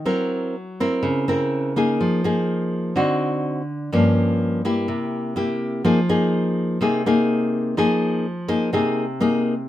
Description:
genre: bossa nova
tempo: 125 BPM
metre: 4/4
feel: straight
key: F minor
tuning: A4 = 442 Hz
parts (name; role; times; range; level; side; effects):
- nylon-string guitar; solo; 0.0-9.7 s; G2 to Bb4; -19 LUFS; left 1 dB; none
room: light reverb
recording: none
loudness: -19 LUFS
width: side -13 dB against mid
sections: 0.0-9.7 A section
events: none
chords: 0.1 Gb7#11; 2.0 Fm7; 3.0 D7b9; 3.9 Gm7b5; 4.9 C7; 5.8 Fm7

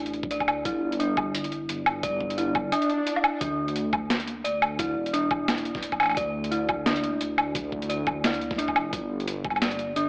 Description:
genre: half-time drum and bass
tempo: 174 BPM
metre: 4/4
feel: swing 56% on 16ths, half-time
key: unclear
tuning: A4 = 440 Hz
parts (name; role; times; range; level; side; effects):
- dark detuned synth bell; arpeggios; 0.0-10.1 s; D4 to D5; -28 LUFS; equal; chorus, analog delay
- dark detuned saw bass; bass; 0.0-10.1 s; E1 to D2; -33 LUFS; equal; none
- boom bap sampler-style drum kit; drums; 0.1-10.0 s; hi-hat, snare drum, woodblock; -26 LUFS; equal; overdrive
- electronic kick drum; drums; 0.2-9.5 s; none; -34 LUFS; equal; none
- swell; sound effects; 2.8-3.4 s; none; -30 LUFS; equal; none
room: light reverb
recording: dry, gritty hardware recording, AM radio sound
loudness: -24 LUFS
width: side -39 dB against mid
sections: 0.0-10.1 A section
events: swell 2.8-3.4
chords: 0.0 G5; 3.4 N.C.; 8.9 G5

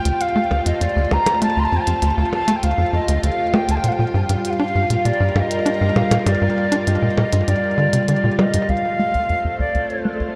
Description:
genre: ambient, sequencer-driven space music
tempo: 99 BPM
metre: 4/4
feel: straight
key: D phrygian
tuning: A4 = 441 Hz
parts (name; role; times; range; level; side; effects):
- wooden flute; melody; 0.0-10.2 s; D5 to C6; -24 LUFS; equal; delay
- string machine, full ensemble; sustained chords; 0.0-10.4 s; G3 to F5; -26 LUFS; equal; ensemble chorus
- pulsing gated texture; texture; 0.1-8.7 s; G4 to G5; -38 LUFS; equal; none
- tight sequencer bass; riff; 0.1-10.3 s; D2 to D4; -22 LUFS; equal; subtle chorus, delay
- electronic hi-hat and percussion blips; percussion; 0.1-10.3 s; none; -28 LUFS; equal; delay
room: wet echo chamber reverb, RT60 2.6 s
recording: echo-heavy mix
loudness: -19 LUFS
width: mono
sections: 0.0-8.7 A section; 8.7-10.4 B section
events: filter sweep on analog synth bass 8.7-10.4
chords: 0.0 Dm7; 3.8 Gm7; 8.7 Dm7

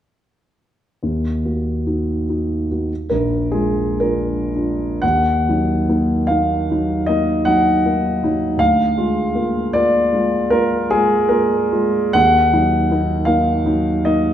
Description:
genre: classical, romantic nocturne for solo piano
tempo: 37-54 BPM (dotted quarters)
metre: 9/8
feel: rubato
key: Eb minor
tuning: A4 = 443 Hz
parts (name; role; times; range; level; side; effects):
- warm concert grand piano; solo; 1.0-14.3 s; Bb1 to Gb5; -15 LUFS; equal; none
room: wet recital hall reverb, RT60 1.6 s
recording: dark, warm production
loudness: -15 LUFS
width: side -10 dB against mid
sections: 1.0-5.0 A section; 5.0-14.3 B section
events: none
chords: 1.0 Ebm; 2.9 Bb7; 5.0 Ebm; 8.6 Bb7/D; 12.2 Ebm

